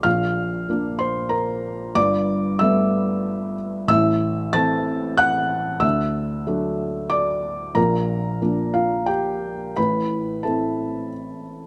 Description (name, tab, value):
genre	neoclassical minimalist piano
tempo	93 BPM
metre	3/4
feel	uneven beats, rubato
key	unclear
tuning	A4 = 440 Hz
part	felt-muted upright piano	solo	0.0-11.7 s	G1 to A6	-22 LUFS	equal	none
room	light reverb, studio reverb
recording	rough home demo mix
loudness	-22 LUFS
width	mono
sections	0.0-11.7 A section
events	none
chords	0.1 Bb; 2.0 Gadd9; 3.9 Am; 5.8 D; 7.8 Bb; 9.8 Am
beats	| 0.05 0.69 1.33 | 1.97 2.60 3.24 | 3.88 4.54 5.20 | 5.83 6.47 7.12 | 7.77 8.41 9.08 | 9.77 10.46 11.14